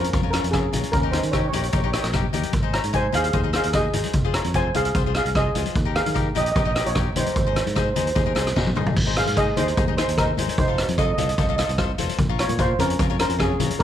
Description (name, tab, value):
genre	calypso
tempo	149 BPM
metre	4/4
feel	straight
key	Ab major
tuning	A4 = 440 Hz
part	steel pan	melody	0.0-13.8 s	Db4 to Bb5	-24 LUFS	right 1 dB	slapback echo
part	cavaquinho	accompaniment	0.0-13.8 s	Eb4 to Eb5	-29 LUFS	left 11 dB	none
part	fingered electric bass	bass	0.0-13.8 s	F1 to Eb3	-26 LUFS	right 1 dB	none
part	street-band drum kit	drums	0.0-13.8 s	crash cymbal, hi-hat, kick drum, rim click, snare drum, toms	-23 LUFS	equal	none
part	congas	percussion	0.2-13.8 s	none	-33 LUFS	left 8 dB	none
room	light reverb, small room ambience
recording	1960s-style stereo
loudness	-19 LUFS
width	side -10 dB against mid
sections	0.0-9.0 A section; 9.0-13.8 A section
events	drum fill 8.5-9.0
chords	0.0 Bbm7; 0.9 Eb7; 2.5 Ab; 4.1 Fm7; 5.8 Eb; 7.4 Ab; 10.6 F7; 12.2 Bbm7